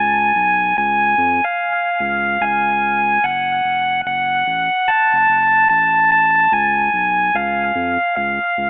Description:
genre	dub reggae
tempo	73 BPM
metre	4/4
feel	swing 61% on 16ths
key	F# harmonic minor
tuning	A4 = 440 Hz
part	tonewheel organ	melody	0.0-8.7 s	E#5 to A5	-16 LUFS	equal	stopped rotary speaker, dub echo
part	warm sub bass	bass	0.0-8.7 s	E#1 to E#2	-30 LUFS	equal	none
room	light reverb, digital ambience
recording	echo-heavy mix, telephone sound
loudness	-16 LUFS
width	mono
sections	0.0-8.7 A section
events	none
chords	0.0 C#; 3.2 F#m; 6.5 C#

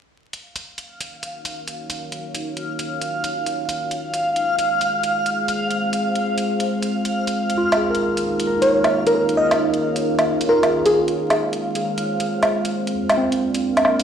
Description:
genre	future garage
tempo	134 BPM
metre	4/4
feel	swing 64% on 16ths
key	Eb dorian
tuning	A4 = 440 Hz
part	deep dark ambient pad	sustained chords	1.5-14.0 s	Eb4 to F5	-24 LUFS	right 1 dB	chorus, built-in reverb
part	backwards swelling texture	texture	1.3-14.0 s	F5	-25 LUFS	equal	built-in reverb
part	electronic hi-hat and woodblock	drums	0.3-14.0 s	none	-23 LUFS	equal	overdrive
part	barky tine electric piano	accompaniment	7.6-14.0 s	C4 to Bb4	-23 LUFS	right 1 dB	auto-pan, analog delay
part	bell-like FM electric piano	melody	8.6-11.0 s	Ab4 to Eb5	-19 LUFS	equal	chorus, tremolo, tape echo
room	wet digital room reverb, RT60 1.1 s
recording	played on a big sound system in a bare room, stone room reverb, vinyl crackle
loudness	-18 LUFS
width	side -8 dB against mid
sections	0.2-14.0 A section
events	fade-in on ambient pad 0.2-14.0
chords	0.2 Ebm7; 3.8 Fm; 7.4 Eb5; 10.9 Fm; 12.7 Bb

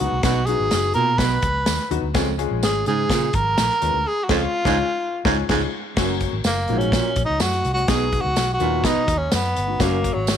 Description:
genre	uptempo 1960s-style soul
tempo	126 BPM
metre	4/4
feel	straight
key	F# major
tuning	A4 = 440 Hz
part	breathy tenor saxophone	melody	0.0-10.4 s	F#3 to B4	-22 LUFS	equal	none
part	warm upright piano	accompaniment	0.0-10.2 s	F#3 to B4	-27 LUFS	left 13 dB	none
part	vintage muted fingered electric bass	bass	0.0-10.4 s	F#1 to C#3	-25 LUFS	equal	none
part	congas	percussion	0.1-10.4 s	none	-37 LUFS	right 12 dB	none
part	breathy baritone saxophone	riff	0.2-10.0 s	E#2 to B2	-26 LUFS	right 10 dB	none
part	natural country drum kit	drums	0.2-10.4 s	crash cymbal, hi-hat, kick drum, snare drum	-24 LUFS	left 1 dB	none
part	tambourine	percussion	0.3-10.4 s	none	-33 LUFS	right 15 dB	none
room	light reverb, small room ambience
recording	1960s-style stereo with parts hard left and right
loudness	-18 LUFS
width	side -9 dB against mid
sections	0.0-6.0 A section; 6.0-10.4 B section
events	band accent 4.1-6.0; tenor saxophone solo 6.0-10.4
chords	0.0 B; 2.1 C#; 6.0 F#; 7.9 B; 9.8 F#

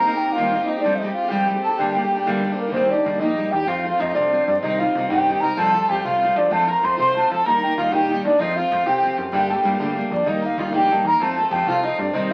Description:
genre	celtic folk, Celtic jig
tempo	127 BPM (dotted quarters)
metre	6/8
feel	straight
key	unclear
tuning	A4 = 441 Hz
part	mellow baroque flute	melody	0.0-12.3 s	Bb4 to C6	-23 LUFS	equal	none
part	dark fiddle	second line	0.0-12.3 s	Bb3 to C5	-27 LUFS	equal	none
part	picked steel-string acoustic guitar	accompaniment	0.0-12.3 s	F2 to G4	-27 LUFS	equal	none
part	plucky analog bass	bass	2.7-12.3 s	Bb1 to F3	-34 LUFS	equal	none
room	wet studio reverb, RT60 0.5 s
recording	very old 78 rpm record, vinyl crackle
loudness	-20 LUFS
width	mono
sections	0.0-2.7 A section; 2.7-10.3 B section; 10.3-12.3 B section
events	none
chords	0.0 Cm7; 0.8 Fadd9; 1.8 Gmadd9; 2.7 Eb; 3.7 F; 4.6 Cm; 5.6 Fadd9; 6.5 F; 7.5 Eb; 8.4 F; 9.3 Gmadd9; 10.3 Eb; 11.2 F

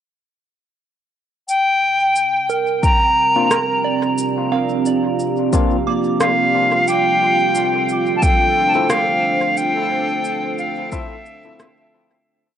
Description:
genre	ambient dub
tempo	89 BPM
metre	4/4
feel	swing 56% on 16ths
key	D minor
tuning	A4 = 440 Hz
part	bright reedy silver concert flute	melody	1.5-11.9 s	E5 to Bb5	-17 LUFS	equal	dub echo
part	deep dark ambient pad	sustained chords	3.0-12.3 s	C4 to D5	-21 LUFS	right 2 dB	chorus, built-in reverb, cassette tape
part	electronic shaker and rim click	drums	1.5-11.7 s	none	-25 LUFS	left 1 dB	overdrive, cassette tape, dub echo
part	soft synth bell	arpeggios	2.5-8.8 s	Bb3 to D6	-25 LUFS	right 7 dB	chorus, phaser, cassette tape, dub echo
part	electronic kick drum	drums	2.8-11.1 s	none	-18 LUFS	equal	overdrive, cassette tape
part	overdriven tine electric piano	stabs	3.4-11.7 s	Bb3 to A4	-27 LUFS	left 7 dB	cassette tape, dub echo
part	backwards swelling texture	texture	7.8-12.3 s	A4	-33 LUFS	equal	built-in reverb, cassette tape
room	moderate spring reverb, RT60 2.7 s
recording	home recording on cassette, nothing above 11.0 kHz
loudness	-15 LUFS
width	side -9 dB against mid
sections	1.5-12.3 groove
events	fade-out 8.7-12.3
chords	1.5 C9sus4; 6.9 Dm7

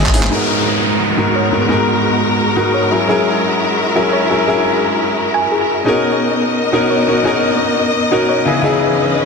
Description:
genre	drum and bass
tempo	173 BPM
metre	4/4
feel	swing 54% on 16ths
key	G# minor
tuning	A4 = 440 Hz
part	clear grand piano	accompaniment	0.0-9.3 s	G#2 to A#4	-15 LUFS	left 1 dB	digital delay
part	warm studio string section	sustained chords	0.0-9.3 s	E3 to D#5	-17 LUFS	left 2 dB	sidechain pumping
part	thumb-piano-like synth pluck	arpeggios	0.0-8.8 s	F#4 to G#5	-22 LUFS	right 2 dB	chorus, tape echo
part	downlifter	sound effects	0.3-3.1 s	none	-21 LUFS	right 1 dB	none
room	wet digital room reverb, RT60 1.0 s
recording	dense, heavily limited modern master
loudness	-12 LUFS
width	side -4 dB against mid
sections	0.3-9.3 A section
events	none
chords	0.3 G#m9; 2.9 F#9; 5.9 Bmaj7; 8.5 C#m9

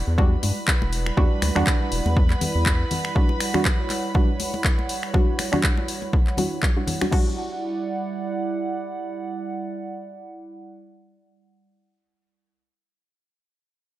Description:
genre	deep house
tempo	121 BPM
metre	4/4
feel	swing 56% on 16ths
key	E dorian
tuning	A4 = 440 Hz
part	hollow soft pad	sustained chords	0.0-11.7 s	G3 to F#5	-30 LUFS	right 3 dB	chorus, sidechain pumping
part	round analog bass	bass	0.0-2.8 s	E1 to G2	-23 LUFS	equal	sidechain pumping
part	dark studio violin section	texture	0.0-7.1 s	B4 to B5	-33 LUFS	right 1 dB	none
part	filtered dub chord stab	stabs	0.2-11.7 s	G3 to F#4	-27 LUFS	right 1 dB	chorus, sidechain pumping, analog delay
part	electronic kick drum	drums	0.2-7.2 s	none	-20 LUFS	equal	studio reverb
part	congas	percussion	0.2-7.1 s	none	-31 LUFS	left 2 dB	none
part	house drum kit	drums	0.4-7.2 s	crash cymbal, finger snaps, handclaps, hi-hat	-27 LUFS	left 1 dB	studio reverb
room	light reverb, digital ambience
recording	none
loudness	-20 LUFS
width	side -14 dB against mid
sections	0.0-7.1 A section; 7.1-11.1 B section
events	filter sweep on synth stab 0.0-7.1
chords	0.0 Em9

